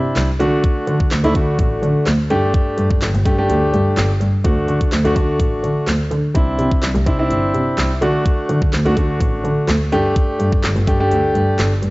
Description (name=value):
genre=dance-pop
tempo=126 BPM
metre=4/4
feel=straight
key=D mixolydian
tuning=A4 = 440 Hz
part: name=warm concert grand piano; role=accompaniment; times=0.0-11.7 s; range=A3 to G4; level=-19 LUFS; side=equal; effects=sidechain pumping, cassette tape
part: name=rich double bass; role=bass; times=0.0-11.9 s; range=G1 to D3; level=-18 LUFS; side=equal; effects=sidechain pumping
part: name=pop drum kit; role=drums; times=0.2-11.9 s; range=handclaps, hi-hat, kick drum, snare drum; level=-19 LUFS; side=equal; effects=none
room=light reverb, studio reverb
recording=home recording on cassette, nothing above 7.7 kHz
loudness=-14 LUFS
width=side -21 dB against mid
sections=0.0-11.9 A section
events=none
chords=0.4 D; 2.3 Gsus2; 4.4 D; 6.4 Cadd9; 8.0 D; 9.9 Gsus2